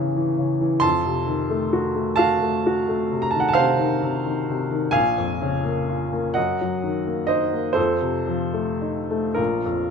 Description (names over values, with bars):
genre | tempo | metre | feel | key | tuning
classical, romantic nocturne for solo piano | 36-45 BPM (dotted quarters) | 9/8 | rubato | unclear | A4 = 438 Hz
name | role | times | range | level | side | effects
clear upright piano | solo | 0.0-9.9 s | Bb1 to C#6 | -20 LUFS | equal | none
room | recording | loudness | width
moderate recital hall reverb, RT60 1.5 s | close, detailed microphones | -20 LUFS | side -6 dB against mid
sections
0.0-9.9 A section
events
none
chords
0.0 Edim7; 0.8 F7b9; 4.9 Bbm; 6.4 Ebm/Gb; 7.8 F7; 9.4 Bb5